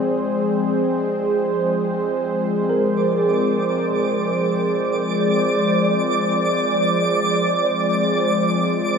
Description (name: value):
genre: ambient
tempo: free time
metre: none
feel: none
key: F dorian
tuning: A4 = 439 Hz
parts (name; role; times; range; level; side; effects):
- warm analog pad; sustained chords; 0.0-9.0 s; F3 to C5; -19 LUFS; equal; chorus
- overdriven tine electric piano; arpeggios; 0.0-9.0 s; Bb4 to D5; -32 LUFS; equal; none
- twinkling granular texture; texture; 3.0-9.0 s; D5 to D6; -22 LUFS; right 2 dB; built-in reverb
room: wet concert hall reverb, RT60 2.3 s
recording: none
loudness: -17 LUFS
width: side -6 dB against mid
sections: 0.0-9.0 A section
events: filter sweep on analog synth pad 0.0-9.0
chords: 0.0 Fm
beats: free time